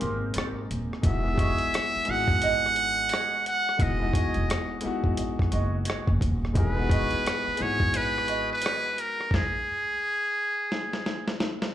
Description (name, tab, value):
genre	R&B, neo-soul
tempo	87 BPM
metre	4/4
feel	swing 62% on 16ths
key	unclear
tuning	A4 = 440 Hz
part	mellow electric guitar	second line	0.0-8.9 s	C4 to D#5	-34 LUFS	right 5 dB	wah, slapback echo
part	warm grand piano	accompaniment	0.0-9.3 s	Ab3 to Bb4	-32 LUFS	left 3 dB	slapback echo
part	upright bass	bass	0.0-8.5 s	Eb1 to Ab1	-30 LUFS	equal	none
part	dusty soul sampler-style drum kit	drums	0.0-11.7 s	hi-hat, kick drum, rim click, snare drum	-28 LUFS	equal	none
part	trumpet with metal mute	melody	1.1-11.4 s	G#4 to F#5	-26 LUFS	right 1 dB	slapback echo
room	small room ambience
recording	live gig heard through the venue's PA, club reverb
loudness	-24 LUFS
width	side -11 dB against mid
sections	0.0-11.7 A section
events	break 0.0-1.0; stop 9.3-11.7; drum fill 10.7-11.7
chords	0.0 Abmaj9; 1.0 Emaj9